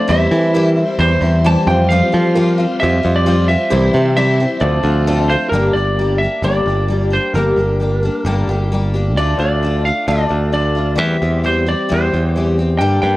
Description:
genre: rock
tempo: 132 BPM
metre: 4/4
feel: straight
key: unclear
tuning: A4 = 439 Hz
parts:
  - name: lightly driven lead guitar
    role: melody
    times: 0.0-13.2 s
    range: Bb4 to A5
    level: -19 LUFS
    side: equal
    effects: none
  - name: picked twelve-string acoustic guitar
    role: accompaniment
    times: 0.0-13.2 s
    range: G2 to G4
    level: -19 LUFS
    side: left 2 dB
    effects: none
  - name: tonewheel organ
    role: sustained chords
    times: 0.0-5.5 s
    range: F3 to C5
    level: -26 LUFS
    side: right 1 dB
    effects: slow rotary speaker, overdrive, chorus vibrato
  - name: warm concert grand piano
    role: accompaniment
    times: 0.1-5.4 s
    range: D4 to D5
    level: -23 LUFS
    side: right 3 dB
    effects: none
  - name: modern bright picked electric bass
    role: bass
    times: 0.1-13.2 s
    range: G1 to F3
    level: -16 LUFS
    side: equal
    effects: none
room: light reverb, studio ambience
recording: worn, warbling old tape, cassette tape, warbly pitch drift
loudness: -13 LUFS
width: side -17 dB against mid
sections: 0.0-5.5 A section; 5.5-13.2 B section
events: none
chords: 0.1 C/E; 1.7 Fsus2; 3.7 C; 4.6 Dm7; 5.5 Gm; 9.2 Dm; 11.0 C/E

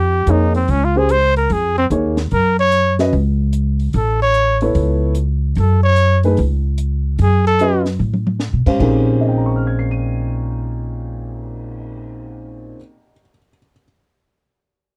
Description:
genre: modal jazz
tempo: 148 BPM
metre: 4/4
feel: swing 66% on 8ths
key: Bb dorian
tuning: A4 = 440 Hz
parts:
  - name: warm trumpet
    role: melody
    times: 0.0-7.8 s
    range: C4 to Db5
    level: -18 LUFS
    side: equal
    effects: none
  - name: upright bass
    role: bass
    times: 0.0-12.7 s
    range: A1 to Cb3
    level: -19 LUFS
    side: equal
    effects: none
  - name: warm upright piano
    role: accompaniment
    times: 0.3-13.8 s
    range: Bb2 to Eb7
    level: -22 LUFS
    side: equal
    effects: none
  - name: compact cocktail drum kit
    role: drums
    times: 0.3-12.0 s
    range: crash cymbal, cymbal swell, hi-hat, kick drum, snare drum, toms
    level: -27 LUFS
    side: equal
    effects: none
room: little or no reverb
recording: dry, close 1970s-style studio recording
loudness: -16 LUFS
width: mono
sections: 0.0-8.8 A section; 8.8-12.1 B section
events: trumpet solo 0.0-8.8; drum fill 8.0-8.4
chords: 0.0 Bbm11; 2.3 Gbmadd11; 8.8 Bbm11

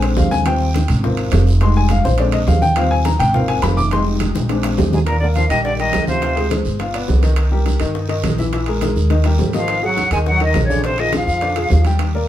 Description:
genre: Afro-Cuban jazz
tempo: 208 BPM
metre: 4/4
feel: straight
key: Eb major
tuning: A4 = 440 Hz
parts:
  - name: clear upright piano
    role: accompaniment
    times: 0.0-12.3 s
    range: D3 to D6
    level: -20 LUFS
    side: left 2 dB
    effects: none
  - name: upright bass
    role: bass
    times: 0.0-12.3 s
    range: F1 to G2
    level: -17 LUFS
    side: equal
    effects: none
  - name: bongos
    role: percussion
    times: 0.0-12.3 s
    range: none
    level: -27 LUFS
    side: left 4 dB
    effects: none
  - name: congas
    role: percussion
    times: 0.0-12.3 s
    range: none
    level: -25 LUFS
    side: right 1 dB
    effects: none
  - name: timbales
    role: percussion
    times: 0.0-12.1 s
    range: none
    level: -27 LUFS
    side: right 5 dB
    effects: none
  - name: guiro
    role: percussion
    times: 0.2-12.3 s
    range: none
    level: -35 LUFS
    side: right 4 dB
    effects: none
  - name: breathy bright silver concert flute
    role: melody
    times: 4.9-6.5, 9.6-11.8 s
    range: Ab4 to Ab5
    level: -20 LUFS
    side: left 2 dB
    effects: none
  - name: trombone with plunger mute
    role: second line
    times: 4.9-6.5, 9.6-11.8 s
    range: Ab2 to Ab3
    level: -26 LUFS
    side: right 4 dB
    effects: none
room: moderate studio reverb, RT60 0.6 s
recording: band playing live in one room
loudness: -14 LUFS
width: side -12 dB against mid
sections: 0.0-5.1 A section; 5.1-12.3 B section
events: upright piano solo 0.0-5.1; drum fill 4.3-5.1, 9.1-9.7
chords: 0.5 Eb6; 1.0 Ab69; 1.6 Fm7; 2.2 Bb7; 2.8 Eb6; 3.3 Ab69; 3.9 Fm7; 4.5 Bb7; 5.1 Ebmaj9; 6.2 Dm7b5; 6.8 G7; 7.4 Cm7; 8.5 Emaj7#11/A#; 9.1 Eb; 9.7 Absus2; 10.8 Bb7

